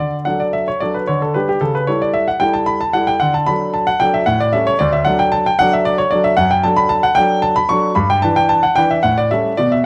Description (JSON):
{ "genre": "classical-period piano sonatina", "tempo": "113 BPM", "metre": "3/4", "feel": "rubato", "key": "D major", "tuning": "A4 = 442 Hz", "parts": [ { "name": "clear grand piano", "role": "solo", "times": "0.0-9.8 s", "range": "D2 to C#6", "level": "-16 LUFS", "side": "equal", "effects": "none" } ], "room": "moderate recital hall reverb, RT60 1.4 s", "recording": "close, detailed microphones, vinyl crackle", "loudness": "-16 LUFS", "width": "mono", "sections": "0.0-9.9 A section", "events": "none", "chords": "0.0 D; 1.1 G5/D; 1.6 A7/C#; 3.2 D; 4.3 A7; 4.8 D; 6.4 D/F#; 8.0 Em7/G; 9.0 A7" }